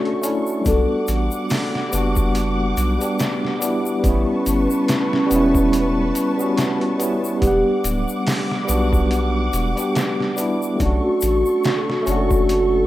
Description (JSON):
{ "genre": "trip hop", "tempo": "71 BPM", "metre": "4/4", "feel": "swing 57% on 16ths", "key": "E dorian", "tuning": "A4 = 440 Hz", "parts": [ { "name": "pure breathy sine lead", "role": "melody", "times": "0.0-12.9 s", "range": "C#4 to A4", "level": "-21 LUFS", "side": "right 1 dB", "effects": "analog chorus" }, { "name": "tine electric piano", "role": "accompaniment", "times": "0.0-12.9 s", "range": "G3 to F#5", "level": "-21 LUFS", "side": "equal", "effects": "medium stereo tremolo, harmonic tremolo, tape echo" }, { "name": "dark symphonic string section", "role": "sustained chords", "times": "0.0-12.9 s", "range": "G3 to D6", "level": "-28 LUFS", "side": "left 1 dB", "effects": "none" }, { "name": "trip hop sampler-style drum kit", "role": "drums", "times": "0.1-12.7 s", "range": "hi-hat, kick drum, snare drum", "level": "-24 LUFS", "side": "equal", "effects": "none" }, { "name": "egg shaker", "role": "percussion", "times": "0.2-12.7 s", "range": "none", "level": "-31 LUFS", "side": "left 6 dB", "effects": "none" }, { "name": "soft dub sub bass", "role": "bass", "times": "0.7-12.9 s", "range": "D1 to B1", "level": "-22 LUFS", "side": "equal", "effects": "none" } ], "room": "light reverb", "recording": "rough home demo mix", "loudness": "-17 LUFS", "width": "side -15 dB against mid", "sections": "0.0-12.9 A section", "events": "none", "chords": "0.0 Bm9 (rootless); 0.7 Em9 (rootless); 4.0 A9; 7.4 Em9; 10.8 Bm9 (rootless)", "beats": "| 0.66 1.50 2.35 3.19 | 4.04 4.88 5.73 6.57 | 7.42 8.26 9.11 9.95 | 10.80 11.64 12.49" }